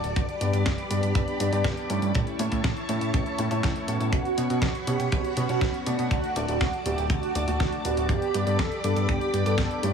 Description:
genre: italo disco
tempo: 121 BPM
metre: 4/4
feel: straight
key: unclear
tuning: A4 = 443 Hz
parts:
  - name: string machine, full ensemble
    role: sustained chords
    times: 0.0-9.9 s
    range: E4 to D6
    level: -32 LUFS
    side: left 1 dB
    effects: ensemble chorus
  - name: fat analog bass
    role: bass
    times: 0.0-9.9 s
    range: D1 to B2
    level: -28 LUFS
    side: equal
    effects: none
  - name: detuned 8-bit digital drum machine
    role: drums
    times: 0.0-9.9 s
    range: hi-hat, snare drum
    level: -34 LUFS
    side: left 1 dB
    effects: studio reverb
  - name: kick drum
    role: drums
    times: 0.2-9.7 s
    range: none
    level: -28 LUFS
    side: equal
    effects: studio reverb
  - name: warm grand piano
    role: stabs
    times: 0.4-9.9 s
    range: A3 to D5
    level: -32 LUFS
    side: left 1 dB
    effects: digital delay
  - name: mellow synth brass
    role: melody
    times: 4.1-9.9 s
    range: F#4 to A4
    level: -29 LUFS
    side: right 4 dB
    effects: chorus, digital delay
room: light reverb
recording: heavily compressed radio sound, multiband compression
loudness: -23 LUFS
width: side -6 dB against mid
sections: 0.0-9.9 A section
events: none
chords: 0.2 G; 2.1 A; 4.1 Bsus2; 6.1 D; 8.1 G

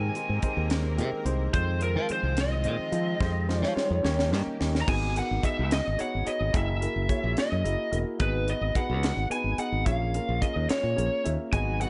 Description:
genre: electric jazz fusion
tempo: 72 BPM (dotted quarters)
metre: 6/8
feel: straight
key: F minor, G# minor from 4.9 s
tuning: A4 = 440 Hz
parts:
  - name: lead guitar through a small cranked amp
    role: melody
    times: 0.0-11.9 s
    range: Bb4 to Bb5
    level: -33 LUFS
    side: equal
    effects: overdrive
  - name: warm grand piano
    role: accompaniment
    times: 0.0-11.9 s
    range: Ab3 to G5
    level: -36 LUFS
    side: equal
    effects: none
  - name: clear symphonic string section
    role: sustained chords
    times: 0.0-4.9, 11.5-11.9 s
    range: B2 to Bb4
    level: -41 LUFS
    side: equal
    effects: none
  - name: modern bright fingered electric bass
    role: bass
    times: 0.0-11.8 s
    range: E1 to F3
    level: -31 LUFS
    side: equal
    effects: none
  - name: crisp fusion drum kit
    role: drums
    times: 0.2-11.9 s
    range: crash cymbal, hi-hat, kick drum, snare drum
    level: -33 LUFS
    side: equal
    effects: none
room: little or no reverb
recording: nothing above 10.5 kHz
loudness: -27 LUFS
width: mono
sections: 0.0-4.9 A section; 4.9-11.9 B section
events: drum fill 3.2-4.9; grand piano fill 4.0-4.9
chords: 0.0 Abmaj9; 1.5 Fm7; 3.2 Fm9; 4.0 Eb7; 4.9 G#m7; 6.5 F#13; 8.2 G#m7; 9.9 A#m7

